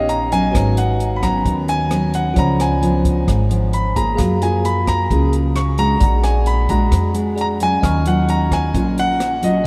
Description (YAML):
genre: bossa nova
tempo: 132 BPM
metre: 4/4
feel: straight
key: Eb minor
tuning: A4 = 440 Hz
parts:
  - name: clear concert grand piano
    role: melody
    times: 0.0-9.7 s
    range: Eb5 to Db6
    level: -23 LUFS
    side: equal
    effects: none
  - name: bell-like tine electric piano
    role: accompaniment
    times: 0.0-9.7 s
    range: Eb4 to F6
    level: -30 LUFS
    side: equal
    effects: none
  - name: nylon-string guitar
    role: accompaniment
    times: 0.0-9.7 s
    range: Ab2 to Ab4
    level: -23 LUFS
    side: equal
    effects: none
  - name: upright bass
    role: bass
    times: 0.0-9.6 s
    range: Ab1 to Gb2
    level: -22 LUFS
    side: equal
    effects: none
  - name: compact cocktail drum kit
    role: drums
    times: 0.1-9.5 s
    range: hi-hat, kick drum, rim click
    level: -26 LUFS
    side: equal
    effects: none
room: wet cathedral reverb, RT60 5.9 s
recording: in a vast, echoing space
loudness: -17 LUFS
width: mono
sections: 0.0-9.7 A section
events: none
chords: 0.0 Eb7b13; 0.5 Abm11; 2.4 Db7b9; 4.2 Gbmaj9; 6.0 Bb7b13; 7.8 Ebm9